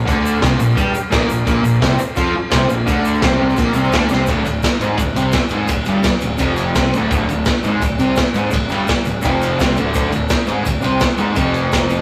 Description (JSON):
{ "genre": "garage rock duo or trio", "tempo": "169 BPM", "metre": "4/4", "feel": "straight", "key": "D minor", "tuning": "A4 = 440 Hz", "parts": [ { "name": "fuzz fingered electric bass", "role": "bass", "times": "0.0-12.0 s", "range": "D1 to G2", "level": "-23 LUFS", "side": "equal", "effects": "overdrive" }, { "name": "fuzz guitar", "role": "riff", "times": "0.1-12.0 s", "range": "D2 to G4", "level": "-20 LUFS", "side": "equal", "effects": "distortion" }, { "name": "crunchy breakbeat drum kit", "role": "drums", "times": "0.1-12.0 s", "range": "crash cymbal, kick drum, ride cymbal, snare drum", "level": "-21 LUFS", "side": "equal", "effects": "none" }, { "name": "tube shaker", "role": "percussion", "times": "0.1-12.0 s", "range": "none", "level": "-41 LUFS", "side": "equal", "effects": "none" } ], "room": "moderate stone room reverb, RT60 1.0 s", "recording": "rough rehearsal-room recording, tube saturation", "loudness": "-16 LUFS", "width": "mono", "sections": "0.0-4.3 A section; 4.3-12.0 B section", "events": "drum fill 4.1", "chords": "0.0 Bb5; 4.3 Dm" }